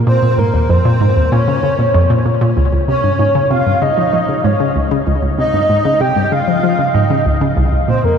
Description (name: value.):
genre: ambient.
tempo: 96 BPM.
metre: 4/4.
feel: straight.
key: unclear.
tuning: A4 = 440 Hz.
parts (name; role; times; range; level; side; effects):
breathy flute-like synth lead; melody; 0.1-8.2 s; Bb4 to G5; -16 LUFS; equal; ensemble chorus, ping-pong delay.
hollow square pluck; riff; 0.1-8.2 s; C2 to F3; -14 LUFS; equal; chorus, phaser, ping-pong delay.
room: wet huge ambient reverb, RT60 7.8 s.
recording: in a vast, echoing space.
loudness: -11 LUFS.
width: side -7 dB against mid.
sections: 0.0-2.6 A section; 2.6-8.2 B section.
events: none.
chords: 0.0 Bbm; 2.6 Db; 7.6 N.C..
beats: | 0.07 0.69 1.32 1.94 | 2.57 3.19 3.82 4.44 | 5.07 5.69 6.32 6.94 | 7.57.